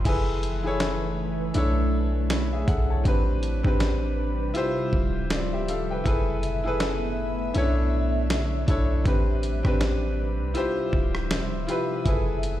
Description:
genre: contemporary R&B.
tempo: 80 BPM.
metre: 4/4.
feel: swing 58% on 16ths.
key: F# minor.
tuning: A4 = 438 Hz.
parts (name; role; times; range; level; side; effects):
clear baby grand piano; accompaniment; 0.0-12.6 s; C4 to A5; -28 LUFS; left 2 dB; none.
ethereal airy pad; sustained chords; 0.0-12.6 s; A2 to G#5; -32 LUFS; equal; ensemble chorus, built-in reverb.
clean 808-style bass; bass; 0.0-12.6 s; D1 to C2; -27 LUFS; equal; none.
dusty soul sampler-style drum kit; drums; 0.1-12.6 s; crash cymbal, hi-hat, kick drum, rim click, snare drum; -27 LUFS; equal; none.
mallet-like synth pluck; texture; 0.1-3.4, 10.6-11.3 s; E5 to G#5; -43 LUFS; left 1 dB; none.
room: little or no reverb.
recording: played on a big sound system in a bare room, stone room reverb.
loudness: -22 LUFS.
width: side -13 dB against mid.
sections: 0.1-12.6 A section.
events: none.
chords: 0.1 F#m11; 1.6 Bm11; 3.1 Am11; 4.6 Dm11; 6.1 F#m11; 7.6 Bm11; 9.1 Am11; 10.6 Dm11; 12.1 F#m11.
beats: | 0.06 0.81 1.56 2.31 | 3.06 3.81 4.56 5.31 | 6.06 6.81 7.56 8.31 | 9.06 9.81 10.56 11.31 | 12.06.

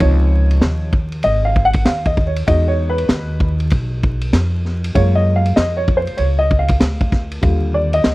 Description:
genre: hip hop, jazz-hop.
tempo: 97 BPM.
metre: 4/4.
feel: swing 64% on 16ths.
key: Db major.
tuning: A4 = 439 Hz.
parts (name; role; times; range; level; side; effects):
warm upright piano; accompaniment; 0.0-8.1 s; C3 to Gb5; -19 LUFS; equal; none.
upright bass; bass; 0.0-8.1 s; Ab1 to Gb2; -17 LUFS; equal; none.
vintage drum kit; drums; 0.0-8.1 s; hi-hat, kick drum, ride cymbal, snare drum; -18 LUFS; equal; none.
room: little or no reverb.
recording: dry, close 1970s-style studio recording, vinyl crackle.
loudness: -14 LUFS.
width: side -19 dB against mid.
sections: 0.0-8.1 A section.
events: upright piano solo 0.0-8.1.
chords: 0.0 Dbmaj9; 2.5 Emaj9; 5.0 Gbmaj9; 7.4 Ebmaj9.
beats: | 0.01 0.62 1.24 1.86 | 2.48 3.10 3.72 4.33 | 4.95 5.57 6.19 6.81 | 7.43 8.05.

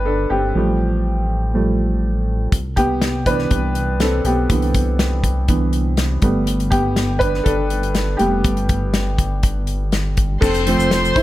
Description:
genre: piano-driven pop.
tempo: 122 BPM.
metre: 4/4.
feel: straight.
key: C major.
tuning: A4 = 440 Hz.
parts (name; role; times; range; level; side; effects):
warm upright piano; accompaniment; 0.0-11.2 s; D3 to C5; -19 LUFS; right 1 dB; none.
chorused synth bass; bass; 0.0-11.2 s; F1 to C2; -20 LUFS; equal; none.
natural country drum kit; drums; 2.5-11.2 s; crash cymbal, hi-hat, kick drum, snare drum; -20 LUFS; left 1 dB; none.
warm studio violin section; second line; 10.4-11.2 s; C5 to C6; -20 LUFS; left 2 dB; none.
tube shaker; percussion; 10.4-11.2 s; none; -34 LUFS; left 7 dB; none.
room: light reverb, small room reverb.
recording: none.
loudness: -16 LUFS.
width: side -15 dB against mid.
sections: 0.0-10.4 A section.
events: upright piano solo 0.0-10.4.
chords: 0.0 Gadd9; 0.5 Fadd9/A; 2.5 Cmaj7; 6.2 Gadd9; 10.4 F.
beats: 0.06 | 0.55 1.04 1.53 2.03 | 2.52 3.01 3.51 4.00 | 4.50 4.99 5.48 5.98 | 6.47 6.96 7.46 7.95 | 8.45 8.94 9.43 9.93 | 10.42 10.91.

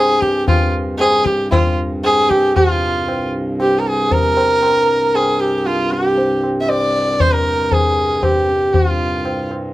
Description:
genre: indian classical, Hindustani.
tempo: 116 BPM.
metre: 3/4.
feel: straight.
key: unclear.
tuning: A4 = 440 Hz.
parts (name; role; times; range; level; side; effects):
rich sarangi; melody; 0.0-9.5 s; F4 to E5; -15 LUFS; equal; none.
pedal harmonium; drone; 0.0-9.7 s; C2 to G2; -23 LUFS; right 1 dB; none.
tabla; percussion; 0.2-9.7 s; none; -20 LUFS; left 2 dB; none.
room: light reverb.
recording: close, detailed microphones.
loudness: -14 LUFS.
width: side -16 dB against mid.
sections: 0.0-2.6 A section; 2.6-9.7 B section.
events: none.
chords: none.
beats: 0.48 | 1.00 1.52 2.04 | 2.56 3.08 3.60 | 4.12 4.63 5.15 | 5.66 6.18 6.69 | 7.21 7.72 8.23 | 8.74 9.25.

